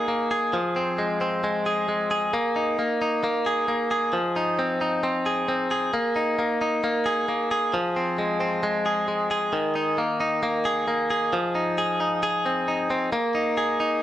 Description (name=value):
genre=indie pop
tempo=134 BPM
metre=4/4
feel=straight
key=Ab major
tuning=A4 = 440 Hz
part: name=direct-recorded clean electric guitar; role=solo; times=0.0-14.0 s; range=Eb3 to Ab4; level=-22 LUFS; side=equal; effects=slapback echo
room=light reverb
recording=dark, warm production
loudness=-22 LUFS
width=side -12 dB against mid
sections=0.0-11.3 A section; 11.3-14.0 B section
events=none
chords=0.0 Ebsus4; 0.5 Fm; 2.3 Ebsus4; 4.1 Ab6; 5.9 Ebsus4; 7.7 Fm; 9.5 Ebsus4; 11.3 Ab6; 13.1 Ebsus4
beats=0.08 | 0.53 0.98 1.43 1.88 | 2.33 2.79 3.24 3.69 | 4.14 4.59 5.04 5.49 | 5.93 6.38 6.83 7.28 | 7.73 8.18 8.63 9.08 | 9.53 9.98 10.43 10.88 | 11.33 11.78 12.22 12.67 | 13.12 13.57 14.02